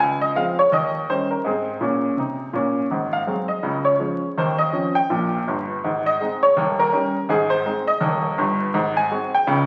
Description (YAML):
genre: jazz, stride piano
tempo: 164 BPM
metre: 4/4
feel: swing 60% on 8ths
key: Ab major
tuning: A4 = 442 Hz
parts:
  - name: bright baby grand piano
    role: solo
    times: 0.0-9.7 s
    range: Eb1 to Ab5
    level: -21 LUFS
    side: equal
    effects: none
room: wet large studio reverb, RT60 1.2 s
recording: very old 78 rpm record, vinyl crackle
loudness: -21 LUFS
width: mono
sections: 0.0-2.9 A section; 2.9-9.7 B section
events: none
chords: 0.0 Dbmaj7; 0.7 Eb7; 1.4 Ab; 2.9 Ab7; 3.6 Db; 4.4 Eb13; 5.8 Ab; 6.6 Eb7; 7.3 Ab; 8.8 Ab7